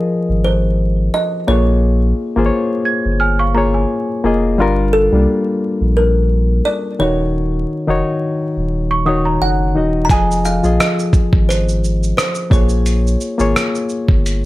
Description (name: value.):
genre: lo-fi hip hop.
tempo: 87 BPM.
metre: 4/4.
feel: swing 56% on 16ths.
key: unclear.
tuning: A4 = 440 Hz.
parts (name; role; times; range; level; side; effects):
kalimba; melody; 0.0-13.2 s; A4 to Bb5; -20 LUFS; right 1 dB; none.
bright reed electric piano; accompaniment; 0.0-14.5 s; Eb3 to Eb5; -18 LUFS; left 2 dB; cassette tape.
sub bass with octave; bass; 0.3-14.5 s; Eb1 to C2; -16 LUFS; equal; none.
worn celesta; second line; 2.9-4.5, 8.9-10.1 s; Db5 to Ab6; -20 LUFS; right 3 dB; analog delay.
dusty soul sampler-style drum kit; drums; 10.1-14.4 s; hi-hat, kick drum, rim click, shaker; -16 LUFS; equal; none.
room: light reverb.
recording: vinyl crackle.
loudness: -13 LUFS.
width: side -17 dB against mid.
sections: 0.0-14.5 A section.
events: none.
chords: 0.0 Fm7; 1.5 Bbm7; 4.6 Gm7; 7.0 Ebm7; 10.1 Fm7; 12.5 Bbm7.